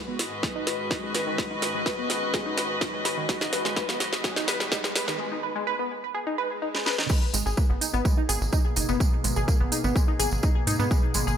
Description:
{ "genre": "melodic techno", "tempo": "126 BPM", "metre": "4/4", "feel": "straight", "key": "G# minor", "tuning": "A4 = 440 Hz", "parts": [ { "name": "evolving wavetable pad", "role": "sustained chords", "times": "0.2-11.4 s", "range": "G#2 to B4", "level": "-34 LUFS", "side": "left 1 dB", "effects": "chorus, built-in reverb, sidechain pumping" }, { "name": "tight sequenced synth", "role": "arpeggios", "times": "0.0-11.4 s", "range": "D#3 to B4", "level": "-30 LUFS", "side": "equal", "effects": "chorus, sidechain pumping, digital delay" }, { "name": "swarming drone", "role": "drone", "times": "0.0-5.2 s", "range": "G#2", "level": "-50 LUFS", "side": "left 3 dB", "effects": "none" }, { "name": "riser and swell", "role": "sound effects", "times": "2.0-7.1 s", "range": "none", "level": "-40 LUFS", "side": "equal", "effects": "none" }, { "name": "warm studio string section", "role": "texture", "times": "0.0-5.2 s", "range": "G#3 to D#5", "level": "-32 LUFS", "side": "left 1 dB", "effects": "sidechain pumping" }, { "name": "house drum kit", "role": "drums", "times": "0.2-11.2 s", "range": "crash cymbal, hi-hat, snare drum", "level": "-28 LUFS", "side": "equal", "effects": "none" }, { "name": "electronic kick drum", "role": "drums", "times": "0.4-11.0 s", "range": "none", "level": "-25 LUFS", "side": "equal", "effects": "overdrive" }, { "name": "tambourine", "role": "percussion", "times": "7.1-11.4 s", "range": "none", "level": "-32 LUFS", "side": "right 4 dB", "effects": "none" }, { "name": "tight sequencer bass", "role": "bass", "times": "7.3-11.4 s", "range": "F#1 to G#2", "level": "-27 LUFS", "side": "equal", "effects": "sidechain pumping" } ], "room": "moderate plate reverb, RT60 1.9 s", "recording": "bright 1980s-style digital production, high-pass filter", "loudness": "-23 LUFS", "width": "side -9 dB against mid", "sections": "0.0-7.1 A section; 7.1-11.4 B section", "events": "build-up 0.0-7.1; drum fill 0.0-5.2, 6.7-7.1; filter sweep on synth arpeggio sound 0.0-7.1; swell 6.3-7.1; drop 7.1-11.4", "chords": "0.0 Badd9/G#; 7.1 G#madd9" }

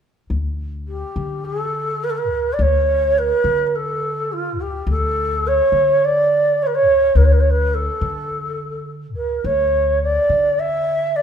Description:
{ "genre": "persian", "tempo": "105 BPM", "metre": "4/4", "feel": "straight", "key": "D avaz esfahan", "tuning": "A4 = 439 Hz", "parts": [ { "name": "upright bass", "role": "bass", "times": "0.3-11.2 s", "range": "D2 to D3", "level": "-22 LUFS", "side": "left 2 dB", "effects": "none" }, { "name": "breathy bright low ney", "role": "melody", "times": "0.9-11.2 s", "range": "F4 to E5", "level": "-17 LUFS", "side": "right 2 dB", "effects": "none" } ], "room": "moderate recital hall reverb, RT60 1.7 s", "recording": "minimal, uncompressed stereo recording", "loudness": "-16 LUFS", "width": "side -8 dB against mid", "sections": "0.3-11.2 A section", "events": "none", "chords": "none" }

